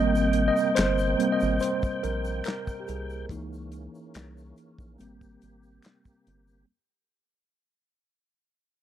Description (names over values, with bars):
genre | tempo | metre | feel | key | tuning
R&B, neo-soul | 71 BPM | 4/4 | straight | Ab major | A4 = 440 Hz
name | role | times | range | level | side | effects
mellow tine electric piano | accompaniment | 0.0-6.7 s | Fb3 to Eb5 | -26 LUFS | right 1 dB | medium stereo tremolo
tonewheel organ | sustained chords | 0.0-6.7 s | C3 to G5 | -34 LUFS | equal | fast rotary speaker, chorus vibrato
rubbery square bass | bass | 0.0-6.6 s | G1 to Db2 | -31 LUFS | equal | none
egg shaker and finger snaps | percussion | 0.2-6.7 s | none | -41 LUFS | left 3 dB | none
warm soul drum kit | drums | 0.3-6.5 s | handclaps, hi-hat, kick drum, snare drum | -31 LUFS | left 1 dB | none
room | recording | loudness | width
little or no reverb | dry, close 1970s-style studio recording | -24 LUFS | side -11 dB against mid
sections
0.0-6.7 A section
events
fade-out 0.0-6.7; tine electric piano solo 0.0-6.7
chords
0.0 Abmaj9; 3.3 Dbm6; 5.0 Abmaj9